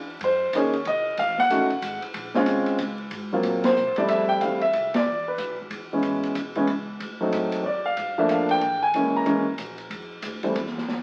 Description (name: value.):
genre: jazz piano trio.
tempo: 185 BPM.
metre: 3/4.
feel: swing 62% on 8ths.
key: unclear.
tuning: A4 = 440 Hz.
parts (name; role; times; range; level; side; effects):
upright bass; bass; 0.0-11.0 s; Eb1 to C3; -43 LUFS; equal; none.
warm grand piano; melody; 0.2-10.6 s; F2 to Bb5; -24 LUFS; equal; none.
open jazz drum kit; drums; 0.2-11.0 s; hi-hat, kick drum, ride cymbal, snare drum; -35 LUFS; equal; none.
room: moderate large studio reverb, RT60 1.3 s.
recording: very old 78 rpm record, vinyl crackle.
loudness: -24 LUFS.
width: mono.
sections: 0.0-4.1 A section; 4.1-11.0 B section.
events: band accent 3.6, 4.9.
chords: 0.2 Gb5; 1.2 Cb7; 2.1 Bbm9; 3.1 Ab13; 3.8 C9; 4.1 Fmaj9; 5.1 E7(no3); 6.0 Amaj9; 7.0 D7b9; 8.0 Gm9; 8.9 Gb9; 9.9 Fmaj7(no3).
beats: | 0.21 0.53 0.86 | 1.18 1.50 1.83 | 2.15 2.47 2.80 | 3.12 3.44 3.77 | 4.09 4.41 4.74 | 5.06 5.38 5.71 | 6.03 6.35 6.68 | 7.00 7.33 7.65 | 7.97 8.30 8.62 | 8.94 9.27 9.59 | 9.91 10.24 10.56 | 10.88.